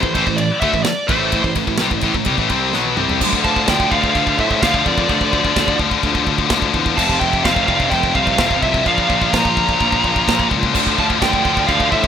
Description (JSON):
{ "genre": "heavy metal", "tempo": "128 BPM", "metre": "4/4", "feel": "straight", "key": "unclear", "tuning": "A4 = 437 Hz", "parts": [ { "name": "smooth overdriven lead guitar", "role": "melody", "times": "0.0-12.1 s", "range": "C5 to Bb5", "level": "-20 LUFS", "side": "right 3 dB", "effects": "none" }, { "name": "heavy high-gain guitar", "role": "riff", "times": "0.0-12.1 s", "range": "F2 to C4", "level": "-17 LUFS", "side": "left 8 dB", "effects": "distortion" }, { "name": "high-gain distorted guitar", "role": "riff", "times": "0.0-3.2, 10.7-12.1 s", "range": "A2 to C4", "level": "-25 LUFS", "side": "right 16 dB", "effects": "distortion" }, { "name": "thick fuzz guitar", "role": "riff", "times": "0.0-12.1 s", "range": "F2 to D4", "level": "-27 LUFS", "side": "right 5 dB", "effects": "distortion" }, { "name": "fuzz picked electric bass", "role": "bass", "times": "0.0-12.1 s", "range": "F1 to A2", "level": "-24 LUFS", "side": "right 1 dB", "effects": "overdrive" }, { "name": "modern studio drum kit", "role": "drums", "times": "0.0-12.1 s", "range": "china cymbal, crash cymbal, kick drum, ride cymbal, snare drum, toms", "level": "-22 LUFS", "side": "right 1 dB", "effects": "none" }, { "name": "high-gain lead guitar", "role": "second line", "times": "3.4-12.1 s", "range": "A4 to F5", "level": "-28 LUFS", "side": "right 12 dB", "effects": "distortion" } ], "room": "small room reverb", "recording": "rough home demo mix", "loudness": "-14 LUFS", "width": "side -8 dB against mid", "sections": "0.0-3.2 A section; 3.2-12.1 B section", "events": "drum fill 2.7-3.2", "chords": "0.0 Am; 3.2 Dm; 7.0 F; 8.9 Bb; 10.7 Dm" }